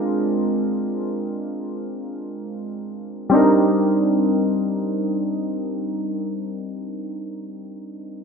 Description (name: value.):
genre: R&B.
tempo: free time.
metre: none.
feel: none.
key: C minor.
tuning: A4 = 441 Hz.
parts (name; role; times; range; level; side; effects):
warm analog keys; accompaniment; 0.0-8.2 s; G3 to Bb4; -20 LUFS; equal; chorus, low-pass filter.
room: moderate plate reverb, RT60 2.5 s.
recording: none.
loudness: -20 LUFS.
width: side -6 dB against mid.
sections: 0.0-3.3 A section; 3.3-7.1 B section.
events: filter sweep on synth keys 0.0-3.3.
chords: 0.0 Bb9; 3.3 Cm9.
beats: free time.